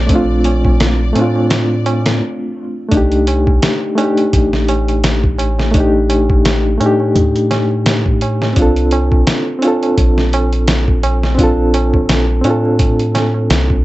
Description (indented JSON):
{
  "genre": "trip hop",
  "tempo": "85 BPM",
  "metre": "4/4",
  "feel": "swing 57% on 16ths",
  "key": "C dorian",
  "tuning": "A4 = 441 Hz",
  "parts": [
    { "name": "reed electric piano", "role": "accompaniment", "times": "0.0-13.8 s", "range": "A3 to A4", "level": "-15 LUFS", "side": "equal", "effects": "overdrive, tremolo, low-pass filter, tape echo" },
    { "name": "bright studio string section", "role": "sustained chords", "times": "0.0-2.2 s", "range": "D5", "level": "-30 LUFS", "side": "left 6 dB", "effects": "none" },
    { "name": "round analog bass", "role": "bass", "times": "0.0-13.8 s", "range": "A1 to A2", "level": "-16 LUFS", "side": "equal", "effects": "none" },
    { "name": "trip hop sampler-style drum kit", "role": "drums", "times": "0.1-13.8 s", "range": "hi-hat, kick drum, snare drum", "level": "-15 LUFS", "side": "equal", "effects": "none" },
    { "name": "tabla", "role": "percussion", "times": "0.1-13.7 s", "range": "none", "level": "-25 LUFS", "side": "right 4 dB", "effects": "none" }
  ],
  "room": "light reverb",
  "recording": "nothing above 8.0 kHz",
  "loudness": "-11 LUFS",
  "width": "side -17 dB against mid",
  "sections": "0.0-2.9 A section; 2.9-13.8 A section",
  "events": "filter sweep on reed electric piano 0.0-2.9, 2.9-13.8; stop 2.2-2.9",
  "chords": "0.0 Bbmaj9; 2.9 Cm69 (rootless); 8.6 Bbmaj9",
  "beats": "| 0.10 0.80 1.51 2.21 | 2.92 3.63 4.33 5.04 | 5.74 6.45 7.16 7.86 | 8.57 9.27 9.98 10.68 | 11.39 12.10 12.80 13.51"
}